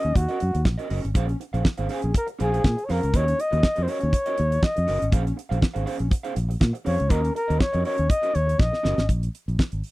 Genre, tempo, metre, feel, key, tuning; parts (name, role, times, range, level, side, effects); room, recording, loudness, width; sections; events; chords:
disco; 121 BPM; 4/4; straight; Bb minor; A4 = 439 Hz
breathy flugelhorn; melody; 0.0-9.1 s; Gb4 to Eb5; -25 LUFS; left 1 dB
electric guitar at the edge of break-up; accompaniment; 0.0-9.0 s; Db4 to F5; -32 LUFS; right 2 dB
fingered electric bass; bass; 0.0-9.8 s; Gb1 to Bb2; -24 LUFS; equal
damped 70s drum kit; drums; 0.0-9.9 s; hi-hat, kick drum, snare drum; -20 LUFS; equal
little or no reverb; dry, close 1970s-style studio recording; -21 LUFS; side -19 dB against mid
0.0-9.1 A section
flugelhorn solo 0.0-9.1; drum fill 8.6-9.1
0.0 Ebm7; 1.2 Bbm9; 3.1 Ebm7; 5.1 Bbm9; 7.1 Ebm7; 9.1 Bb7(no3)